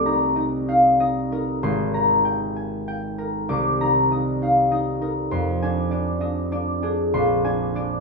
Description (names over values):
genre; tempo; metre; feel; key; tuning
classical, solo harp piece; 97 BPM; 3/4; rubato; C minor; A4 = 441 Hz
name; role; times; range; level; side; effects
concert harp; solo; 0.0-8.0 s; Ab1 to Eb6; -19 LUFS; equal; none
room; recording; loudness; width
moderate studio reverb, RT60 0.5 s; none; -19 LUFS; side -3 dB against mid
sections
0.0-8.0 A section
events
none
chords
0.0 Cm9; 1.6 Abmaj9; 3.5 Cm9; 5.3 Fm6; 7.1 Bb9